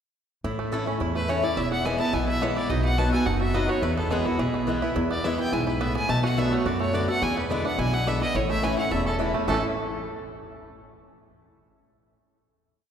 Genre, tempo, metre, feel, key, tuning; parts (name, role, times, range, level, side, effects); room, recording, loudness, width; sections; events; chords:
bluegrass; 212 BPM; 4/4; straight; A major; A4 = 440 Hz
picked swing-style acoustic guitar; accompaniment; 0.4-9.6 s; E2 to F#4; -26 LUFS; left 1 dB
bluegrass banjo; arpeggios; 0.4-9.6 s; A3 to A4; -30 LUFS; right 4 dB
upright bass; bass; 0.4-9.6 s; E1 to F#2; -29 LUFS; equal
clear fiddle; melody; 1.2-9.6 s; F#4 to A5; -29 LUFS; equal
wet church reverb, RT60 3.0 s; recorded in a church or concert hall; -22 LUFS; side -8 dB against mid
0.4-9.5 A section; 9.5-10.6 final chord
0.4 A; 1.6 E; 2.7 B; 3.8 E; 6.1 Bm7; 7.2 E7; 8.4 A